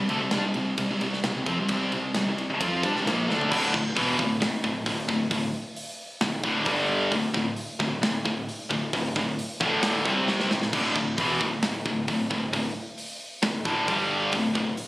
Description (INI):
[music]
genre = heavy metal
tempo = 133 BPM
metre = 4/4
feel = straight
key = D minor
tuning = A4 = 441 Hz
[part]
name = heavy high-gain guitar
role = riff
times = 0.0-14.7 s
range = D2 to F4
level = -28 LUFS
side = left 2 dB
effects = distortion
[part]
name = scooped high-gain guitar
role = riff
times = 0.0-14.7 s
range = D2 to F4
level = -31 LUFS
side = right 3 dB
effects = distortion
[part]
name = picked electric bass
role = bass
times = 0.0-14.8 s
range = D1 to G2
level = -35 LUFS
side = equal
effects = none
[part]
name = tight metal drum kit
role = drums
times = 0.1-14.9 s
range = crash cymbal, hi-hat, kick drum, ride cymbal, snare drum, toms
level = -30 LUFS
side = equal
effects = none
[part]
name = heavy high-gain guitar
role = riff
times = 3.5-14.7 s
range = D2 to C4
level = -30 LUFS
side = equal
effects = distortion
[sound]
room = light reverb, studio ambience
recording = recorded on a phone in the room, studio reverb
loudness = -23 LUFS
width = side -19 dB against mid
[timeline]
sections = 0.0-3.5 A section; 3.5-14.9 B section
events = drum fill 3.3, 10.3-10.7; half time 3.5-14.9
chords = 0.0 C5; 3.5 D5; 6.7 G5; 7.1 D5; 10.1 C5; 10.5 D5; 13.9 G5; 14.3 D5